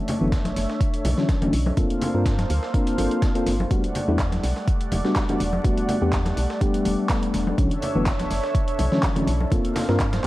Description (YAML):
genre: deep house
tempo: 124 BPM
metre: 4/4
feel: swing 54% on 16ths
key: unclear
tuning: A4 = 440 Hz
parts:
  - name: warm analog pad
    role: sustained chords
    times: 0.0-10.3 s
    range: G3 to F#5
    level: -29 LUFS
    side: right 1 dB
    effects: lush chorus, sidechain pumping
  - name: breakbeat sampler-style drum kit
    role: drums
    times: 0.1-10.3 s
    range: hi-hat, snare drum, tambourine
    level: -37 LUFS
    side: equal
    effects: high-pass filter on perc, high-pass filter on snare, high-pass filter on hats
  - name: punchy analog drum machine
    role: drums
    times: 0.1-10.3 s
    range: handclaps, hi-hat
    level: -33 LUFS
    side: equal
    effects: none
  - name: congas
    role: percussion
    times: 0.1-10.2 s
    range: none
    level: -30 LUFS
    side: left 1 dB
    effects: none
  - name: mellow FM electric piano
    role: stabs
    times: 0.2-10.1 s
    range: D3 to Bb4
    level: -25 LUFS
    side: left 1 dB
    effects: chorus, sidechain pumping, analog delay
  - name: woody FM bass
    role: bass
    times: 0.2-10.3 s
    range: E1 to G2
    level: -25 LUFS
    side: equal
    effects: sidechain pumping
  - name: electronic kick drum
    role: drums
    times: 0.3-10.1 s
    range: none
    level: -23 LUFS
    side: equal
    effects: overdrive
room: light reverb, digital ambience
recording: vinyl crackle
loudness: -20 LUFS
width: side -17 dB against mid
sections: 0.0-10.3 A section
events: none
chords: 0.0 Bm11; 1.8 Gm11; 3.7 Em11; 7.6 Bm11; 9.5 Gm11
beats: 0.32 0.81 1.29 | 1.77 2.26 2.74 3.23 | 3.71 4.19 4.68 5.16 | 5.64 6.13 6.61 7.10 | 7.58 8.06 8.55 9.03 | 9.52 10.00